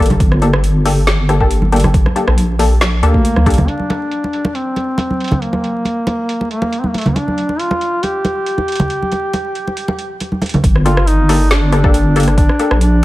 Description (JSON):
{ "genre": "deep dubstep", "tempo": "138 BPM", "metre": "4/4", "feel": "swing 54% on 16ths, half-time", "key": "G minor", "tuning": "A4 = 440 Hz", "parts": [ { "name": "filtered dub chord stab", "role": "stabs", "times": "0.0-3.6, 10.9-12.8 s", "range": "Bb3 to A4", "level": "-19 LUFS", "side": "left 3 dB", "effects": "chorus, dub echo" }, { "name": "deep soft wobble bass", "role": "bass", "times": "0.0-3.7, 10.6-13.0 s", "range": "G1 to D2", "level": "-13 LUFS", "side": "equal", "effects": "chorus" }, { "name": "garage drum kit", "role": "drums", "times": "0.0-12.9 s", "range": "hi-hat, rim click, snare drum", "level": "-21 LUFS", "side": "right 1 dB", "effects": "overdrive, low-pass filter on hats, low-pass filter on snare" }, { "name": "congas", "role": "percussion", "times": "0.1-10.6 s", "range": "none", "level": "-19 LUFS", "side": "right 1 dB", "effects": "none" }, { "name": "electronic kick drum", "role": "drums", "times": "0.2-3.6, 10.6-12.5 s", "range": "none", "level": "-14 LUFS", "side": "equal", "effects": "overdrive" }, { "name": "warm duduk", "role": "melody", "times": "3.0-13.0 s", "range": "A3 to G4", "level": "-18 LUFS", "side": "equal", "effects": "dub echo" } ], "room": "light reverb", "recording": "vinyl crackle", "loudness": "-12 LUFS", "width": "side -17 dB against mid", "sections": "0.0-3.7 A section; 3.7-10.6 B section; 10.6-13.0 C section", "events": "drop 10.6-13.0", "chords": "0.0 Gmadd9; 3.7 N.C.; 10.6 Gmadd9", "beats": "| 0.20 0.64 1.07 1.51 | 1.94 2.38 2.81 3.25 | 3.68 4.12 4.55 4.99 | 5.42 5.86 6.29 6.72 | 7.16 7.59 8.03 8.46 | 8.90 9.33 9.77 10.20 | 10.64 11.07 11.51 11.94 | 12.38 12.81" }